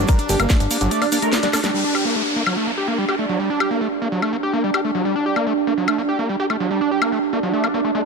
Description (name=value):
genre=psychedelic trance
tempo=145 BPM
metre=4/4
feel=straight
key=G harmonic minor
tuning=A4 = 440 Hz
part: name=supersaw stab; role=melody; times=0.0-1.7 s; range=D4 to D5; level=-25 LUFS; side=right 1 dB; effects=phaser, sidechain pumping, dub echo
part: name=vowel-sweep wobble bass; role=second line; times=0.0-0.5 s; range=Bb3 to C4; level=-37 LUFS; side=left 3 dB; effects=none
part: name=bubbling stepped-filter texture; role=sustained chords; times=0.0-8.1 s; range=D4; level=-25 LUFS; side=right 3 dB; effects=chorus, built-in reverb, sidechain pumping
part: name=screaming distorted acid line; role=riff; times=0.0-8.0 s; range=F#3 to G4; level=-22 LUFS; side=moving between left 6 dB and right 4 dB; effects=distortion, chorus, auto-pan, sidechain pumping, ping-pong delay
part: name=fat analog bass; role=bass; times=0.0-0.9 s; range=G1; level=-21 LUFS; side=left 1 dB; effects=tube saturation
part: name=warbly tape-like pad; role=texture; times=0.0-8.1 s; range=D4 to G5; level=-25 LUFS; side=right 6 dB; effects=chorus, built-in reverb, sidechain pumping
part: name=electronic kick drum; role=drums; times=0.1-0.6 s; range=none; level=-17 LUFS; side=equal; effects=none
part: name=garage drum kit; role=drums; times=0.1-7.7 s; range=hi-hat, snare drum, woodblock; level=-25 LUFS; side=left 3 dB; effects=none
part: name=egg shaker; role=percussion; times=0.1-1.7 s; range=none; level=-31 LUFS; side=right 6 dB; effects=none
part: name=downlifter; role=sound effects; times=1.7-5.1 s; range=none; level=-27 LUFS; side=equal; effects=none
room=moderate lush hall reverb, RT60 2.1 s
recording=faint mains hum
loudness=-17 LUFS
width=side -4 dB against mid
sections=0.0-1.7 A section; 1.7-8.1 B section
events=drop 0.0-1.7; drum fill 1.4-1.7; band accent 1.6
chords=0.0 G5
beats=| 0.09 0.50 0.91 1.33 | 1.74 2.15 2.57 2.98 | 3.40 3.81 4.22 4.64 | 5.05 5.46 5.88 6.29 | 6.71 7.12 7.53 7.95